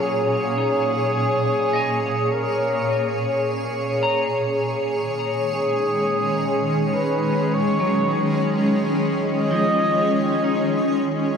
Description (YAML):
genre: ambient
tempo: 52 BPM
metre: 4/4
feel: straight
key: F# major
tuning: A4 = 439 Hz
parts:
  - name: mellow flugelhorn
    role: melody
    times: 0.0-10.9 s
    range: G#4 to D#5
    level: -25 LUFS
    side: right 1 dB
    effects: ping-pong delay
  - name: granular cloud pad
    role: sustained chords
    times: 0.0-11.4 s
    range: A#2 to C#5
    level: -20 LUFS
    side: equal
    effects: built-in reverb
  - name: clean electric guitar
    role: arpeggios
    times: 0.0-11.4 s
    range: E#3 to A#5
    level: -30 LUFS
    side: left 1 dB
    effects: ping-pong delay
room: wet huge ambient reverb, RT60 8.3 s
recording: in a vast, echoing space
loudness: -19 LUFS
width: side -6 dB against mid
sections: 0.0-11.4 A section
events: fade-in on clean electric guitar 0.0-11.4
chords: 0.0 F#add9